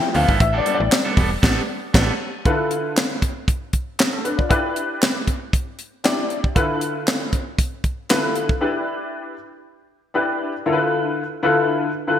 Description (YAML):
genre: early-eighties boogie funk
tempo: 117 BPM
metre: 4/4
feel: straight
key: D dorian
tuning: A4 = 443 Hz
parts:
  - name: warm baby grand piano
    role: accompaniment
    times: 0.0-12.2 s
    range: D3 to G5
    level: -21 LUFS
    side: left 2 dB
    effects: ensemble chorus
  - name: electric guitar at the edge of break-up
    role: riff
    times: 0.0-2.1 s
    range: F3 to A4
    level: -25 LUFS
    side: right 4 dB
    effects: wide subtle chorus
  - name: slap-like FM bass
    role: bass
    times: 0.1-2.1 s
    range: E1 to D2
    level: -21 LUFS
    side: right 1 dB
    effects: none
  - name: tight funk drum kit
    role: drums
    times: 0.1-8.6 s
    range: crash cymbal, handclaps, hi-hat, kick drum, snare drum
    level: -19 LUFS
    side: equal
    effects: gated reverb
room: wet lush hall reverb, RT60 1.6 s, studio ambience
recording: bright 1980s-style digital production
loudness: -18 LUFS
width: side -10 dB against mid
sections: 0.0-2.5 A section; 2.5-10.7 B section; 10.7-12.2 C section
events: grand piano solo 0.0-2.5; band accent 1.4-2.5; break 8.6-10.7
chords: 0.4 A9sus4; 2.5 Dm69; 4.5 Em7; 6.6 Dm69; 8.6 Em7; 10.7 Dm69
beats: | 0.40 0.92 1.43 1.94 | 2.46 2.97 3.48 3.99 | 4.51 5.02 5.53 6.04 | 6.56 7.07 7.58 8.10 | 8.61 9.12 9.63 10.15 | 10.66 11.17 11.69